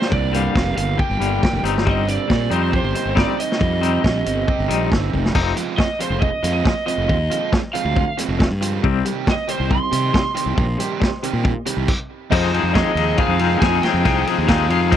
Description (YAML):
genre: indie rock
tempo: 138 BPM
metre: 4/4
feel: straight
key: unclear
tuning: A4 = 441 Hz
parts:
  - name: lead guitar through a small cranked amp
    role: melody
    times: 0.0-15.0 s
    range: C5 to C6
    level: -24 LUFS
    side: right 3 dB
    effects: overdrive, tape echo
  - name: overdriven electric guitar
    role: riff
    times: 0.0-15.0 s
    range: F2 to Ab4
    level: -26 LUFS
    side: right 10 dB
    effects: wide subtle chorus, tape echo
  - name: twangy electric guitar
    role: riff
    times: 0.0-15.0 s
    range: G2 to Ab4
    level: -24 LUFS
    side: left 13 dB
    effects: tremolo
  - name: vintage drum kit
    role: drums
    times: 0.0-15.0 s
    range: crash cymbal, hi-hat, kick drum, ride cymbal, snare drum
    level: -20 LUFS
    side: equal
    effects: none
  - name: fuzz fingered electric bass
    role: bass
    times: 0.1-15.0 s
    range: F1 to C3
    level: -22 LUFS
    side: equal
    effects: overdrive
  - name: string machine, violas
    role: sustained chords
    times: 8.8-15.0 s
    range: C4 to F5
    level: -33 LUFS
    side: left 1 dB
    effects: none
  - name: soft synth bell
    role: second line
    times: 12.3-15.0 s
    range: Eb5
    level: -32 LUFS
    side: left 8 dB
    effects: none
room: little or no reverb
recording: dry, close 1970s-style studio recording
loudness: -16 LUFS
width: side -10 dB against mid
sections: 0.0-5.4 A section; 5.4-12.3 B section; 12.3-15.0 C section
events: drum fill 5.1; stop 11.9-12.3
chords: 0.0 Gm; 1.6 Cm/G; 5.4 Fm7; 8.8 Cm; 12.1 N.C.; 12.3 Fm7